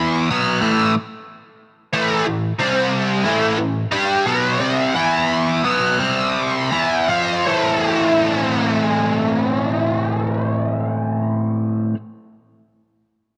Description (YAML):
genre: rock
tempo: 78-92 BPM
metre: 4/4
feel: straight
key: A minor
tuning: A4 = 440 Hz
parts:
  - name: biting overdriven guitar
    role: solo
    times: 0.0-12.0 s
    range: A2 to A4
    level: -19 LUFS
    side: equal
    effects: flanger
room: light reverb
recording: none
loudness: -19 LUFS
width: mono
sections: 0.0-7.5 A section; 7.5-10.5 B section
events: slowing down 1.9-7.5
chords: 0.3 A5; 2.6 C5; 3.2 Am; 4.9 E5; 5.6 B5; 6.0 C5; 6.7 Cadd11/E; 7.5 Am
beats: 0.63 1.28 | 1.93 2.58 3.24 3.91 | 4.59 5.28 5.99 6.72 | 7.47 8.24 9.01 9.77